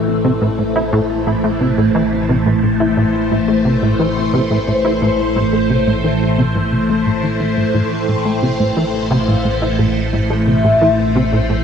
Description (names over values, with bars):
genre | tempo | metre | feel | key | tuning
ambient, sequencer-driven space music | 88 BPM | 4/4 | straight | A minor | A4 = 440 Hz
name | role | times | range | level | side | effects
phased string machine | sustained chords | 0.0-11.6 s | A2 to C5 | -16 LUFS | left 1 dB | ensemble chorus, phaser
fat analog bass | bass | 0.0-11.6 s | A1 | -26 LUFS | equal | none
plucky analog bass | riff | 0.2-11.5 s | A2 to E4 | -18 LUFS | equal | ensemble chorus, tape echo
mellow horn-like synth lead | melody | 7.7-11.6 s | E5 to F5 | -21 LUFS | left 2 dB | analog chorus, tape echo
room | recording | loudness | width
moderate plate reverb, RT60 3.5 s | dreamy mix soaked in reverb | -13 LUFS | side -7 dB against mid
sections
0.0-11.6 A section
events
fade-in on analog synth bass 0.0-11.6; filter sweep on analog synth bass 0.0-11.6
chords
0.0 Am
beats
0.24 0.93 1.61 | 2.29 2.97 3.65 4.33 | 5.02 5.70 6.38 7.06 | 7.74 8.43 9.11 9.79 | 10.47 11.15